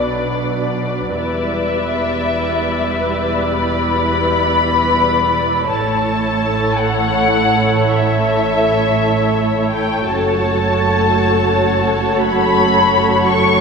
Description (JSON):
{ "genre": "classical, slow romantic movement for string orchestra", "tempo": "48-57 BPM (dotted quarters)", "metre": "12/8", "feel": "rubato", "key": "unclear", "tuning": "A4 = 440 Hz", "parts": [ { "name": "muted studio violin section", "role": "second line", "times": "0.0-13.6 s", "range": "A4 to D5", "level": "-19 LUFS", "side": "left 2 dB", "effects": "none" }, { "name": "muted studio viola section", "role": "accompaniment", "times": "0.0-13.6 s", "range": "F#3 to F#4", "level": "-21 LUFS", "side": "right 2 dB", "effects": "none" }, { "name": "muted studio cello section", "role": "bass", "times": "0.0-13.6 s", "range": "E2 to B2", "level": "-23 LUFS", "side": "right 3 dB", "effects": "none" }, { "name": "muted studio double bass section", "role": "bass", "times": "0.0-13.6 s", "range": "E1 to B1", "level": "-24 LUFS", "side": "right 4 dB", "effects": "none" }, { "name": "muted studio violin section", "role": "melody", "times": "1.1-13.6 s", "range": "E5 to C#6", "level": "-18 LUFS", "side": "left 3 dB", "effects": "none" } ], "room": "wet scoring stage reverb, RT60 2.0 s", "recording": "minimal, uncompressed stereo recording", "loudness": "-14 LUFS", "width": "side -5 dB against mid", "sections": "0.0-13.6 A section", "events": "none", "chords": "0.0 Bm; 1.1 Em7; 5.7 A; 10.1 F#m" }